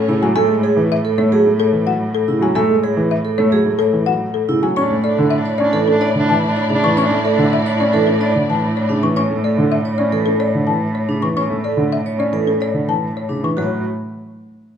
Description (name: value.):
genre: classical, minimalist pattern music.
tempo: 109 BPM.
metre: 4/4.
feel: straight.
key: unclear.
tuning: A4 = 439 Hz.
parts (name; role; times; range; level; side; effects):
folk marimba with medium hard mallets; melody; 0.0-13.8 s; A4 to C#6; -21 LUFS; left 6 dB; none.
clear soprano saxophone; second line; 0.0-0.1, 4.8-8.9 s; C#4 to D4; -23 LUFS; right 1 dB; none.
warm studio string section; sustained chords; 0.0-0.2, 4.8-9.0 s; E4 to D5; -25 LUFS; right 1 dB; none.
rich cello; bass; 0.0-13.8 s; A2; -21 LUFS; right 1 dB; none.
dark baby grand piano; accompaniment; 0.1-13.8 s; C#3 to C#4; -20 LUFS; equal; none.
vibraphone with medium mallets; arpeggios; 0.1-13.8 s; D4 to D5; -20 LUFS; right 6 dB; none.
room: moderate recital hall reverb, RT60 1.4 s.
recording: minimal, uncompressed stereo recording.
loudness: -14 LUFS.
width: side -8 dB against mid.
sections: 0.0-13.6 A section; 13.6-14.8 B section.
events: none.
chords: 0.0 Amaj7; 4.8 Dsus2/A; 13.6 A.